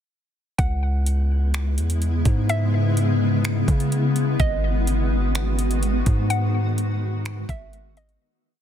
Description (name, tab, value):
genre	hip hop, atmospheric cloud-rap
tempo	126 BPM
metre	4/4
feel	half-time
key	C# minor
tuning	A4 = 440 Hz
part	hollow square pluck	melody	0.6-8.2 s	D#5 to F#5	-30 LUFS	equal	chorus, low-pass filter, ping-pong delay
part	shimmering ambient pad	sustained chords	1.3-8.2 s	C#3 to F#4	-25 LUFS	left 2 dB	chorus, built-in reverb, sidechain pumping
part	long sustained 808-style bass	bass	0.6-8.2 s	G#1 to C#3	-22 LUFS	equal	none
part	smooth R&B drum kit	drums	0.6-8.2 s	finger snaps, hi-hat, kick drum	-23 LUFS	equal	soft clipping on snare
room	digital ambience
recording	dense, heavily limited modern master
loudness	-19 LUFS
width	side -9 dB against mid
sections	0.6-8.2 verse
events	fade-out 6.3-8.2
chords	0.6 C#m7; 4.4 G#m7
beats	| 0.59 1.06 1.54 2.02 | 2.49 2.97 3.44 3.92 | 4.40 4.87 5.35 5.83 | 6.30 6.78 7.25 7.73